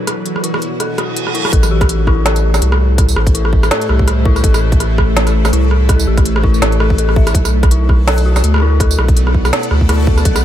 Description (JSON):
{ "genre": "half-time drum and bass", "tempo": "165 BPM", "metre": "4/4", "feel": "swing 57% on 16ths, half-time", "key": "A dorian", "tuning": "A4 = 438 Hz", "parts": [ { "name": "bowed-like drone", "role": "sustained chords", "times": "0.0-10.4 s", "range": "A2 to F#5", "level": "-23 LUFS", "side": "equal", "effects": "built-in reverb, phaser, vintage 12-bit sampler grit, sidechain pumping" }, { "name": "dark detuned synth bell", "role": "arpeggios", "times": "0.0-10.4 s", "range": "E4 to E5", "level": "-22 LUFS", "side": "left 7 dB", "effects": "chorus, digital delay" }, { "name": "backwards swelling texture", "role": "texture", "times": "0.0-10.4 s", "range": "E3 to A4", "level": "-26 LUFS", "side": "left 2 dB", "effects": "built-in reverb" }, { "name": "organic electronic drum kit", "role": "drums", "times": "0.1-10.4 s", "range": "hi-hat, rim click, snare drum, tambourine", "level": "-19 LUFS", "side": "right 1 dB", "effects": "none" }, { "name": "reverse cymbal", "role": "sound effects", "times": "1.0-1.5 s", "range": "none", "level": "-24 LUFS", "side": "right 7 dB", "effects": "none" }, { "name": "saturated sub bass", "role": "bass", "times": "1.5-10.4 s", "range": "A1 to D2", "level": "-13 LUFS", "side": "equal", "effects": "none" }, { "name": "electronic kick drum", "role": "drums", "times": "1.5-10.3 s", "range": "none", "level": "-13 LUFS", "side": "equal", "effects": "none" } ], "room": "little or no reverb", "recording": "none", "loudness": "-10 LUFS", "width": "side -11 dB against mid", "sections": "0.0-1.5 A section; 1.5-10.4 B section", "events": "reverse cymbal 1.0-1.5; drop 1.5-10.4", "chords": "0.0 Bm; 1.5 Am; 7.3 Bm", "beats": "| 0.07 0.44 0.80 1.16 | 1.53 1.89 2.25 2.62 | 2.98 3.35 3.71 4.07 | 4.44 4.80 5.16 5.53 | 5.89 6.25 6.62 6.98 | 7.35 7.71 8.07 8.44 | 8.80 9.16 9.53 9.89 | 10.26" }